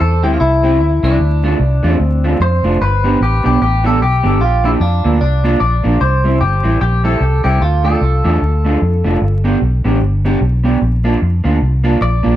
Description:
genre	ska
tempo	150 BPM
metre	4/4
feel	swing 59% on 8ths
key	unclear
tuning	A4 = 440 Hz
part	clean electric guitar	melody	0.0-9.0, 12.0-12.4 s	D4 to D5	-17 LUFS	left 1 dB	wide subtle chorus, tape echo
part	vintage muted fingered electric bass	bass	0.0-12.4 s	F1 to F2	-14 LUFS	equal	none
part	electric guitar at the edge of break-up	accompaniment	0.2-12.4 s	G3 to G4	-18 LUFS	right 2 dB	wide subtle chorus
room	light reverb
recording	vinyl crackle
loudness	-11 LUFS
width	side -12 dB against mid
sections	0.0-2.8 A section; 2.8-12.4 A section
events	none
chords	0.0 C; 1.2 Dm; 2.8 G; 4.4 Bb; 6.0 C; 7.6 Dm; 9.2 G; 10.8 Bb

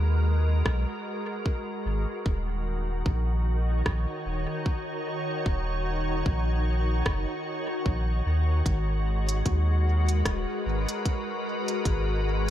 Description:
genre	ambient dub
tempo	75 BPM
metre	4/4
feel	swing 57% on 16ths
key	G# minor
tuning	A4 = 439 Hz
part	soft additive organ-like pad	sustained chords	0.0-12.5 s	D#3 to C#5	-31 LUFS	left 1 dB	ensemble chorus, built-in reverb
part	warm sub bass	bass	0.0-12.5 s	D#1 to D#2	-25 LUFS	equal	none
part	electronic kick drum	drums	0.7-12.0 s	none	-28 LUFS	equal	small room reverb
part	organic electronic drum kit	drums	0.7-12.0 s	hi-hat, rim click	-35 LUFS	right 1 dB	small room reverb, dub echo
room	little or no reverb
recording	none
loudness	-25 LUFS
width	side -12 dB against mid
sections	0.0-12.5 A section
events	none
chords	0.0 G#m9; 2.3 D#m7; 8.7 G#m9

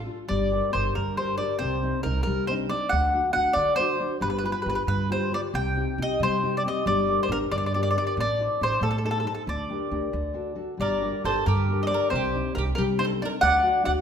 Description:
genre	italian folk, Italian serenade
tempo	91 BPM (dotted quarters)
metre	6/8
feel	straight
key	G harmonic minor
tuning	A4 = 440 Hz
part	nylon-string guitar	accompaniment	0.0-14.0 s	C3 to C5	-30 LUFS	left 4 dB	none
part	upright bass	bass	0.0-14.0 s	G1 to D3	-29 LUFS	right 2 dB	none
part	mandolin	melody	0.3-13.9 s	A4 to G5	-25 LUFS	equal	none
part	mandolin	second line	10.8-13.9 s	G4 to D5	-32 LUFS	right 5 dB	none
room	wet recital hall reverb, RT60 1.4 s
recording	minimal, uncompressed stereo recording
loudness	-23 LUFS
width	side -7 dB against mid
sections	0.3-14.0 A section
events	none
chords	0.3 Gm; 1.6 Cmadd9; 2.9 D; 4.2 G7; 5.5 Cm; 6.9 Gm; 8.2 Adim; 9.5 Gm/D; 10.1 D; 10.8 Gm; 12.1 Cmadd9; 13.4 D

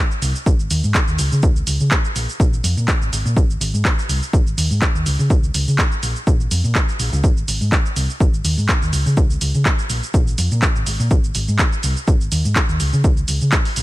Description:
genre	filtered disco house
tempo	124 BPM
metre	4/4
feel	swing 54% on 16ths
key	unclear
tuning	A4 = 440 Hz
part	punchy analog drum machine	drums	0.1-13.8 s	handclaps, hi-hat, shaker	-22 LUFS	right 1 dB	sidechain pumping on perc, sidechain pumping on hats
part	hollow-body short-scale fingered electric bass	bass	0.2-13.8 s	Ab1 to Db3	-19 LUFS	equal	sidechain pumping
part	electronic kick drum	drums	0.5-13.6 s	none	-16 LUFS	equal	none
room	digital ambience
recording	none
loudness	-15 LUFS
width	side -18 dB against mid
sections	0.0-13.8 A section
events	none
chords	none

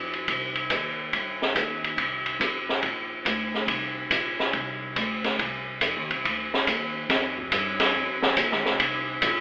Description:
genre	modal jazz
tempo	141 BPM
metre	4/4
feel	swing 67% on 8ths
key	unclear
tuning	A4 = 438 Hz
part	upright bass	bass	0.0-9.4 s	F1 to G2	-36 LUFS	equal	none
part	open jazz drum kit	drums	0.1-9.4 s	hi-hat, kick drum, ride cymbal, snare drum	-24 LUFS	equal	none
room	moderate recital hall reverb, RT60 1.6 s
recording	recorded in a church or concert hall, telephone sound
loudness	-23 LUFS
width	side -27 dB against mid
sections	0.0-7.1 A section; 7.1-9.4 B section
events	none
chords	none

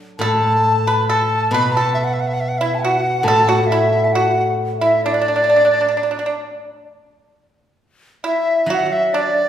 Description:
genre	chinese traditional, Chinese chamber ensemble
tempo	64-69 BPM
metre	2/4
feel	rubato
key	D gong mode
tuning	A4 = 441 Hz
part	steel-string zither	accompaniment	0.0-5.9, 8.7-9.5 s	A2 to D5	-21 LUFS	left 1 dB	none
part	reedy large dizi	melody	0.2-9.5 s	D5 to B5	-20 LUFS	right 1 dB	none
part	hollow concert flute	second line	0.2-9.5 s	D5 to B5	-19 LUFS	left 2 dB	none
part	pipa	second line	0.2-9.5 s	D4 to B4	-21 LUFS	right 4 dB	none
room	wet recital hall reverb, RT60 1.6 s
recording	heard from further back in the room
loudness	-14 LUFS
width	side -10 dB against mid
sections	0.0-6.9 A section; 6.9-9.5 B section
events	none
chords	none

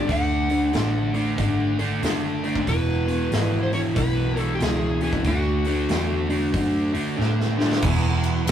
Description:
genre	blues rock power trio and southern rock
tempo	93 BPM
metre	4/4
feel	swing 63% on 8ths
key	unclear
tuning	A4 = 441 Hz
part	overdriven slide guitar	melody	0.0-7.2 s	F#4 to F#5	-29 LUFS	left 2 dB	none
part	overdriven semi-hollow guitar	riff	0.0-8.5 s	E2 to D4	-23 LUFS	right 1 dB	none
part	vintage muted picked electric bass	bass	0.1-8.5 s	E1 to A2	-25 LUFS	equal	none
part	big rock drum kit	drums	0.1-8.5 s	crash cymbal, hi-hat, kick drum, ride cymbal, snare drum	-28 LUFS	equal	none
part	overdriven tonewheel organ	sustained chords	7.8-8.5 s	B3 to B4	-32 LUFS	right 4 dB	none
room	wet studio reverb, RT60 0.5 s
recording	rough rehearsal-room recording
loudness	-20 LUFS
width	side -9 dB against mid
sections	0.0-7.8 A section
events	drum fill 7.2-7.8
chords	0.1 D; 2.7 E; 5.3 D; 7.8 E

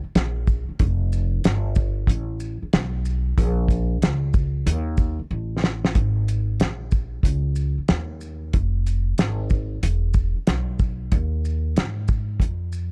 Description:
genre	hip hop, jazz-hop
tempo	93 BPM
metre	4/4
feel	swing 63% on 16ths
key	unclear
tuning	A4 = 441 Hz
part	upright bass	bass	0.0-12.9 s	E1 to G#2	-26 LUFS	equal	none
part	cloth-damped thuddy drum kit	drums	0.2-12.9 s	hi-hat, kick drum, shaker, snare drum	-23 LUFS	equal	none
room	little or no reverb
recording	dark, warm production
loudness	-23 LUFS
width	mono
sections	0.0-6.0 A section; 6.0-12.9 B section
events	drum fill 5.3-6.0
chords	none

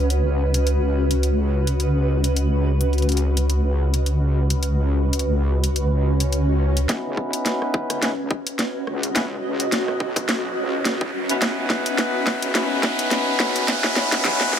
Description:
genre	glitch hop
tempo	106 BPM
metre	4/4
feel	swing 56% on 16ths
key	C# minor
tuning	A4 = 440 Hz
part	wobble bass	bass	0.0-14.6 s	B1 to F#2	-21 LUFS	equal	chorus, high-pass filter
part	granular cloud pad	texture	0.0-14.6 s	C#4 to D#5	-26 LUFS	left 1 dB	built-in reverb, sidechain pumping
part	drum and bass drum kit	drums	0.1-14.6 s	hi-hat, rim click, snare drum	-24 LUFS	equal	overdrive
part	swell and riser	sound effects	5.9-14.6 s	none	-29 LUFS	right 2 dB	none
part	warm horn section	stabs	6.9-14.6 s	B3 to B4	-24 LUFS	left 1 dB	sidechain pumping, low-pass filter, ping-pong delay
part	electronic kick drum	drums	6.9-14.6 s	none	-24 LUFS	equal	overdrive, high-pass filter on kick
room	light reverb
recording	high-pass filter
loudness	-19 LUFS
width	side -9 dB against mid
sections	0.0-6.9 A section; 6.9-14.6 B section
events	swell 5.9-6.9; build-up 6.9-14.6; drum fill 6.9-14.6; filter sweep on horn section 6.9-14.6; filter sweep 6.9-14.6; riser 8.4-14.6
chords	0.0 C#sus2; 6.9 C#m9

